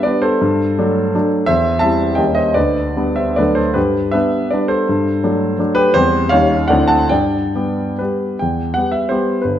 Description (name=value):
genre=classical, romantic triple-time dance for piano with dotted rhythms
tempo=130-191 BPM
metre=3/4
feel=rubato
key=G major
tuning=A4 = 443 Hz
part: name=warm grand piano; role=solo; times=0.0-9.6 s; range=G1 to A5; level=-14 LUFS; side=equal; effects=none
room=moderate recital hall reverb, RT60 1.4 s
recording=none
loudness=-14 LUFS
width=side -10 dB against mid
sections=0.0-8.4 A section; 8.4-9.6 B section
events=none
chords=0.4 D/G; 1.5 C/E; 2.2 Eb7; 2.6 G/D; 3.4 D; 3.8 G; 4.9 D/G; 6.0 C/E; 6.3 Eb7; 6.7 D9; 7.1 G; 8.4 Em